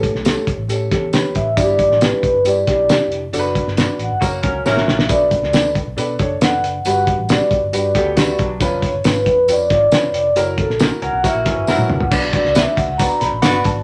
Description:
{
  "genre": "uptempo 1960s-style soul",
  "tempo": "137 BPM",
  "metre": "4/4",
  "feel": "straight",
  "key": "B minor",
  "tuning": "A4 = 440 Hz",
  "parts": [
    { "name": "vibraphone with soft mallets", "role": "melody", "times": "0.0-13.8 s", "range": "A4 to B5", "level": "-20 LUFS", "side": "equal", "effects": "none" },
    { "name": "warm baby grand piano", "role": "accompaniment", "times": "0.0-13.7 s", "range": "G2 to D5", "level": "-25 LUFS", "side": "equal", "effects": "none" },
    { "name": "vintage muted fingered electric bass", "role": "bass", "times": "0.0-13.8 s", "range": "E1 to B2", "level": "-28 LUFS", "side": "equal", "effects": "none" },
    { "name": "cloth-damped thuddy drum kit", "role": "drums", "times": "0.0-13.8 s", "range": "crash cymbal, hi-hat, kick drum, snare drum, toms", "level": "-21 LUFS", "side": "equal", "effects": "none" },
    { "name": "tambourine", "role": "percussion", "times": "0.2-13.5 s", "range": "none", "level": "-36 LUFS", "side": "equal", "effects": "none" },
    { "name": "warm horn section", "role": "second line", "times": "4.2-5.0, 11.2-13.7 s", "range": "F#3 to D5", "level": "-24 LUFS", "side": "equal", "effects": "none" },
    { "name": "direct-recorded clean electric guitar", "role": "riff", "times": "4.2-5.1, 8.0-12.1 s", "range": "E3 to A#4", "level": "-31 LUFS", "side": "equal", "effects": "spring reverb" }
  ],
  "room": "wet studio ambience, RT60 0.5 s",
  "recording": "none",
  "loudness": "-16 LUFS",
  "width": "mono",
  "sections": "0.0-12.1 A section; 12.1-13.8 B section",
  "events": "vibraphone solo 0.0-12.1; band accent 3.3-5.1, 10.4-12.1; drum fill 4.7-5.1, 11.7-12.1",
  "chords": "0.0 A7; 1.6 Em7/G; 3.3 Bm/F#; 4.2 F#; 5.1 Bm7; 6.8 Gmaj7; 8.6 C#7/E#; 10.4 F#7; 12.1 Bm",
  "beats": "0.26 0.70 1.14 | 1.58 2.02 2.46 2.90 | 3.33 3.77 4.21 4.65 | 5.09 5.53 5.97 6.41 | 6.85 7.29 7.73 8.17 | 8.61 9.04 9.48 9.92 | 10.36 10.80 11.24 11.68 | 12.11 12.55 12.99 13.43"
}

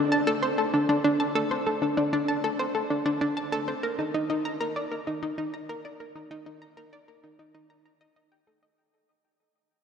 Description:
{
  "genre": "ambient",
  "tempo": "97 BPM",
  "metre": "4/4",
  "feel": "straight",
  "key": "unclear",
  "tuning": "A4 = 440 Hz",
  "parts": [
    { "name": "analog pluck", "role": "solo", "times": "0.0-8.7 s", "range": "D4 to Bb5", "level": "-25 LUFS", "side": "equal", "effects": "chorus, tape echo" }
  ],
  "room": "wet cathedral reverb, RT60 5.9 s",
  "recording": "dreamy mix soaked in reverb",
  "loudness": "-25 LUFS",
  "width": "side -7 dB against mid",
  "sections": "0.0-8.8 A section",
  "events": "fade-out 0.0-8.8",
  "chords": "none",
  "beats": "0.12 0.74 | 1.35 1.97 2.59 3.21 | 3.83 4.45 5.07 5.68 | 6.30 6.92 7.54 8.16"
}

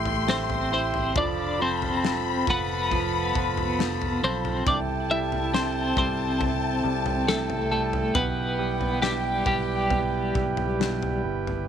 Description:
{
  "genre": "pop ballad",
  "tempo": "68 BPM",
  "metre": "4/4",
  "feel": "straight",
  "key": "A minor",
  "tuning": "A4 = 440 Hz",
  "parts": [
    { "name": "twelve-string electric guitar", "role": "melody", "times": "0.0-11.2 s", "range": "G3 to E5", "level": "-27 LUFS", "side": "left 1 dB", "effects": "tremolo" },
    { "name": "warm studio violin section", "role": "second line", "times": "0.0-11.2 s", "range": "G5 to C6", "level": "-32 LUFS", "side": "left 13 dB", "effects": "none" },
    { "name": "warm grand piano", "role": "accompaniment", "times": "0.0-11.7 s", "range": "B2 to E4", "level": "-32 LUFS", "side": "right 16 dB", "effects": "none" },
    { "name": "pipe organ, principal", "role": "sustained chords", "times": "0.0-11.7 s", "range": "E4 to A5", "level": "-30 LUFS", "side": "right 3 dB", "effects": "none" },
    { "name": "fingered electric bass", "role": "bass", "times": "0.0-11.7 s", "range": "F1 to C2", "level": "-32 LUFS", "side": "equal", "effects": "none" },
    { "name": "loose indie drum kit", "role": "drums", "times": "0.1-11.7 s", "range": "kick drum, snare drum, toms", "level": "-31 LUFS", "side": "left 3 dB", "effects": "none" }
  ],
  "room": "small room ambience",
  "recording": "1960s-style stereo with parts hard left and right",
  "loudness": "-23 LUFS",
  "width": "side -8 dB against mid",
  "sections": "0.0-11.7 A section",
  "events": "none",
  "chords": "0.0 Am7; 1.2 F; 4.7 Am7/C; 8.2 Em/B",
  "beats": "0.28 | 1.16 2.04 2.92 3.79 | 4.66 5.54 6.41 7.28 | 8.15 9.02 9.91 10.80"
}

